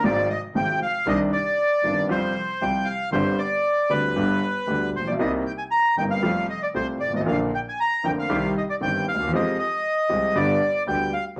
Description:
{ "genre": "tango", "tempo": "117 BPM", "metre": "4/4", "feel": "rubato", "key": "C minor", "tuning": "A4 = 440 Hz", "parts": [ { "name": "bandoneon", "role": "melody", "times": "0.0-11.2 s", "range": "B4 to Bb5", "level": "-26 LUFS", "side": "equal", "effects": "none" }, { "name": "warm concert grand piano", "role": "accompaniment", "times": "0.0-11.1 s", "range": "F1 to G4", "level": "-27 LUFS", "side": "equal", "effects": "none" }, { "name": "clear double bass", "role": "bass", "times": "0.0-11.4 s", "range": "F1 to F2", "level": "-37 LUFS", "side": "equal", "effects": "none" } ], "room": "wet studio reverb, RT60 0.6 s", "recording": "none", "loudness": "-23 LUFS", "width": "mono", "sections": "0.0-11.4 A section", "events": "none", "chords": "0.0 Fm/Ab; 1.1 Cmadd9; 2.1 Fsus2; 3.1 Gsus4; 4.2 G; 5.2 Cm7; 6.2 Fadd9; 7.3 Bb; 8.3 Cm; 9.3 Fmadd9; 10.4 G", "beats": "0.04 0.56 | 1.07 1.59 2.10 2.61 | 3.13 3.64 4.16 4.68 | 5.20 5.72 6.24 6.75 | 7.27 7.79 8.30 8.81 | 9.33 9.84 10.35 10.87 | 11.38" }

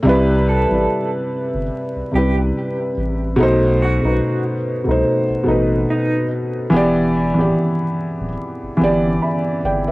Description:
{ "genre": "hip hop", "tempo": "72 BPM", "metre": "4/4", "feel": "swing 56% on 16ths", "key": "C major", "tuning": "A4 = 441 Hz", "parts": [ { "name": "felt-muted upright piano", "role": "accompaniment", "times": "0.0-9.9 s", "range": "B2 to B5", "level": "-16 LUFS", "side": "equal", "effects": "cassette tape, low-pass filter" }, { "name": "soft dub sub bass", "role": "bass", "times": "0.1-9.9 s", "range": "D1 to C2", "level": "-22 LUFS", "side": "equal", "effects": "none" }, { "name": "electric guitar through a small old amp", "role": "melody", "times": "0.5-6.3 s", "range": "D#4 to A4", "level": "-25 LUFS", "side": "right 2 dB", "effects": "tremolo, low-pass filter, cassette tape, analog delay" } ], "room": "light reverb", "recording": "home recording on cassette, vinyl crackle", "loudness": "-16 LUFS", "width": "side -20 dB against mid", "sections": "0.0-9.9 A section", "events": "none", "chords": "0.0 Cmaj7; 3.4 B7b9; 6.7 Em7", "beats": "| 0.05 0.88 1.72 2.55 | 3.38 4.21 5.05 5.88 | 6.71 7.55 8.38 9.21" }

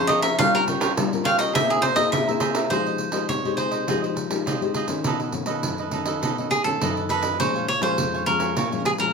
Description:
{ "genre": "samba and choro", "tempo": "103 BPM", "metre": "4/4", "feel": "straight", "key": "F minor", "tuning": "A4 = 437 Hz", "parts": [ { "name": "cavaquinho", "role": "melody", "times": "0.0-9.1 s", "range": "G#4 to F5", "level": "-23 LUFS", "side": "right 1 dB", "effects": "none" }, { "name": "cavaquinho", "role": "accompaniment", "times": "0.0-8.9 s", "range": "D#4 to Bb5", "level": "-28 LUFS", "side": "right 6 dB", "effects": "none" }, { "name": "nylon-string guitar", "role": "accompaniment", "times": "0.0-9.1 s", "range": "F2 to C5", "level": "-27 LUFS", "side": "left 7 dB", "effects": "none" }, { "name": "pandeiro", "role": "percussion", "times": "0.1-9.1 s", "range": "none", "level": "-27 LUFS", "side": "right 3 dB", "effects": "none" } ], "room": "moderate large studio reverb, RT60 1.1 s", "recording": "close, detailed microphones", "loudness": "-20 LUFS", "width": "side -5 dB against mid", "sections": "0.0-2.7 A section; 2.7-9.1 B section", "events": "cavaquinho solo 0.0-2.7", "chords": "0.4 Gm7b5; 1.6 Caug7; 2.7 Fm9; 5.1 B9; 7.4 Bbm7", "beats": "| 0.40 0.97 1.56 2.14 | 2.72 3.30 3.89 4.47 | 5.05 5.64 6.23 6.81 | 7.40 7.98 8.57" }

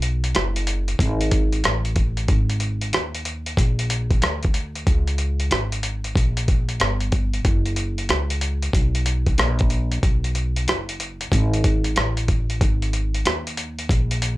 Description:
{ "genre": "hip hop, jazz-hop", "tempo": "93 BPM", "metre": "4/4", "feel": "swing 66% on 16ths", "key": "unclear", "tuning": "A4 = 442 Hz", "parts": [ { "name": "upright bass", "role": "bass", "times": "0.0-14.4 s", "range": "F#1 to D#2", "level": "-23 LUFS", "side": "equal", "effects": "none" }, { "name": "dusty soul sampler-style drum kit", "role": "drums", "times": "0.0-14.4 s", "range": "hi-hat, kick drum, rim click", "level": "-21 LUFS", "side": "equal", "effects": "none" } ], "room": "little or no reverb", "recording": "none", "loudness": "-19 LUFS", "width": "side -18 dB against mid", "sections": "0.0-14.4 A section", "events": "none", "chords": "none", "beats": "0.35 1.00 1.64 | 2.29 2.93 3.58 4.22 | 4.87 5.51 6.16 6.80 | 7.45 8.09 8.74 9.38 | 10.03 10.67 11.32 11.96 | 12.61 13.26 13.90" }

